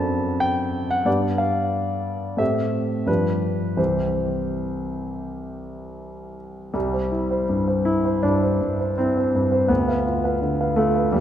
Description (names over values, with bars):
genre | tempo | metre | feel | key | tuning
classical, romantic character piece for solo piano | 79-91 BPM | 4/4 | rubato | C major | A4 = 435 Hz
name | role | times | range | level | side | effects
warm concert grand piano | solo | 0.0-11.2 s | C2 to B5 | -20 LUFS | equal | none
room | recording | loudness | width
wet concert hall reverb, RT60 2.0 s | none | -20 LUFS | side -10 dB against mid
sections
0.0-6.7 A section; 6.7-11.2 B section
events
none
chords
0.0 D7/F#; 1.1 G; 2.4 Am7; 3.1 G7; 3.8 C; 9.7 Bdim/D